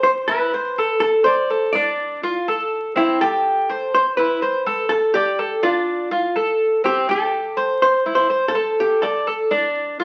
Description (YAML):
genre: latin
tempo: 124 BPM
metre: 4/4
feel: straight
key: A minor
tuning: A4 = 441 Hz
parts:
  - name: hollow-body jazz guitar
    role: melody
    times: 0.0-9.5 s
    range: E4 to D5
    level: -22 LUFS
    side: equal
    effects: none
  - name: Cuban tres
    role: arpeggios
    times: 0.0-10.0 s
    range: C4 to D5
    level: -22 LUFS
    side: equal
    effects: none
room: moderate studio reverb, RT60 0.9 s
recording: very old 78 rpm record, vinyl crackle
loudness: -19 LUFS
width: mono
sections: 0.0-10.0 A section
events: none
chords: 0.0 Am; 1.0 Dm; 3.0 Am7; 4.9 Dm; 6.8 Am7; 8.8 D5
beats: 0.05 0.53 | 1.02 1.50 1.99 2.47 | 2.96 3.44 3.93 4.42 | 4.90 5.39 5.87 6.36 | 6.84 7.33 7.82 8.30 | 8.79 9.27 9.76